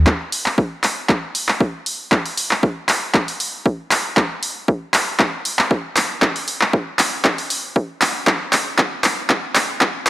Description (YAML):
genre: deep house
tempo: 117 BPM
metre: 4/4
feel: swing 53% on 16ths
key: none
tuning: none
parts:
  - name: electronic kick drum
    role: drums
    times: 0.1-9.9 s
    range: none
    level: -17 LUFS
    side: equal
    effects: overdrive, high-pass filter on kick
  - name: punchy analog drum machine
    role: drums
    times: 0.1-10.1 s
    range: handclaps, hi-hat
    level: -18 LUFS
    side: equal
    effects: overdrive
room: light reverb, digital ambience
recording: dry, gritty hardware recording, high-pass filter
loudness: -16 LUFS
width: side -16 dB against mid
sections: 0.1-10.1 A section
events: build-up 0.1-10.1; drum fill 0.1-10.1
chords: none